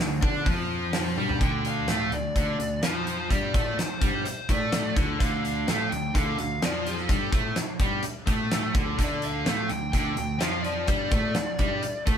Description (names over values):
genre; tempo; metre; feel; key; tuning
hard rock; 127 BPM; 4/4; straight; D minor; A4 = 439 Hz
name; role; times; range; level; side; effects
distorted electric guitar; riff; 0.0-12.2 s; D3 to D4; -31 LUFS; left 5 dB; distortion
distorted electric guitar; riff; 0.0-12.2 s; D3 to D4; -32 LUFS; right 6 dB; distortion
fuzz picked electric bass; bass; 0.0-12.2 s; D2 to D3; -32 LUFS; equal; overdrive
huge arena drum kit; drums; 0.0-12.2 s; hi-hat, kick drum, snare drum, toms; -27 LUFS; equal; none
biting lead guitar; melody; 1.4-12.0 s; A4 to G5; -32 LUFS; left 1 dB; overdrive
room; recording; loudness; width
moderate small room reverb, RT60 0.6 s; band playing live in one room; -24 LUFS; side -8 dB against mid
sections
0.0-1.4 A section; 1.4-12.2 B section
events
drum fill 1.2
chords
0.0 Dm